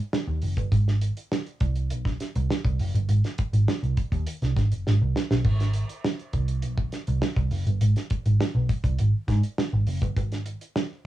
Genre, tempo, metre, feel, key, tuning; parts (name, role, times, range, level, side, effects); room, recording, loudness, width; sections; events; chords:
funk; 102 BPM; 4/4; straight; Ab mixolydian; A4 = 439 Hz
damped 70s drum kit; drums; 0.1-10.9 s; crash cymbal, hi-hat, kick drum, snare drum; -27 LUFS; right 1 dB; cassette tape
vintage muted picked electric bass; bass; 0.3-10.5 s; Gb1 to Ab2; -23 LUFS; right 1 dB
little or no reverb; home recording on cassette; -23 LUFS; side -14 dB against mid
0.0-11.1 A section
drum fill 4.9-5.4